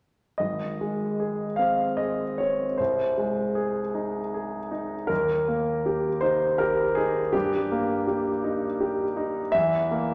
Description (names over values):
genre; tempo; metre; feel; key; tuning
classical, romantic nocturne for solo piano; 50-56 BPM (dotted quarters); 6/8; rubato; Ab major; A4 = 440 Hz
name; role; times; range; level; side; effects
clear concert grand piano; solo; 0.4-10.1 s; Ab1 to F5; -26 LUFS; equal; none
room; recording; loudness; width
wet recital hall reverb, RT60 1.7 s; none; -26 LUFS; mono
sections
0.4-10.1 A section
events
none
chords
0.4 Ab; 2.8 Ab/C; 5.1 Eb; 7.3 Eb/G; 9.5 C7/E (rootless)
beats
| 0.41 1.60 | 2.79 3.95 | 5.10 6.22 | 7.34 8.43 | 9.55